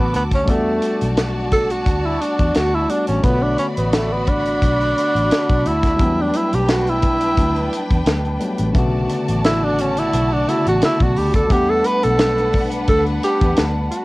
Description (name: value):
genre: lush 1970s-style soul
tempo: 87 BPM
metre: 4/4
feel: swing 54% on 16ths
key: unclear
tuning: A4 = 441 Hz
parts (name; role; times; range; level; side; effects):
- breathy tenor saxophone; melody; 0.0-14.0 s; A3 to B4; -19 LUFS; right 1 dB; cassette tape
- warm symphonic violin section; second line; 0.0-14.0 s; D4 to D6; -26 LUFS; left 1 dB; cassette tape, analog delay
- barky tine electric piano; accompaniment; 0.0-14.0 s; C#3 to F#5; -25 LUFS; left 2 dB; cassette tape
- vintage muted fingered electric bass; bass; 0.0-13.9 s; A1 to E2; -22 LUFS; equal; none
- vibraphone with soft mallets; texture; 0.0-6.3, 11.2-14.0 s; A5 to E6; -35 LUFS; left 1 dB; none
- tight funk drum kit; drums; 0.1-14.0 s; hi-hat, kick drum, snare drum; -20 LUFS; equal; cassette tape
room: light reverb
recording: home recording on cassette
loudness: -15 LUFS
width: side -21 dB against mid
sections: 0.0-14.0 A section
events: tenor saxophone solo 0.0-14.0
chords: 0.5 Em11; 3.2 Bm9; 6.0 Em11; 8.8 Bm9; 11.5 Em11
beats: | 0.48 1.17 1.86 2.55 | 3.24 3.93 4.62 5.31 | 6.00 6.68 7.37 8.06 | 8.75 9.44 10.13 10.82 | 11.51 12.20 12.88 13.57